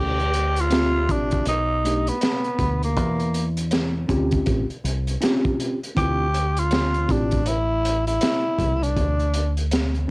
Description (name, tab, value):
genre	hip hop, jazz-hop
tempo	80 BPM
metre	4/4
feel	swing 62% on 16ths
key	D minor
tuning	A4 = 440 Hz
part	growling tenor saxophone	melody	0.0-9.6 s	Bb3 to G4	-23 LUFS	equal	none
part	mellow tine electric piano	accompaniment	0.0-10.1 s	A3 to E5	-24 LUFS	equal	medium stereo tremolo, cassette tape
part	deep dub fingered electric bass	bass	0.0-10.1 s	A1 to E2	-24 LUFS	equal	none
part	crunchy breakbeat drum kit	drums	0.2-10.1 s	hi-hat, kick drum, snare drum	-25 LUFS	equal	cassette tape
room	light reverb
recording	home recording on cassette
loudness	-19 LUFS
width	side -27 dB against mid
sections	0.0-10.1 A section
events	none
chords	0.0 Dm11; 1.5 B7alt; 3.0 Dm11; 4.5 A7alt; 6.0 Dm11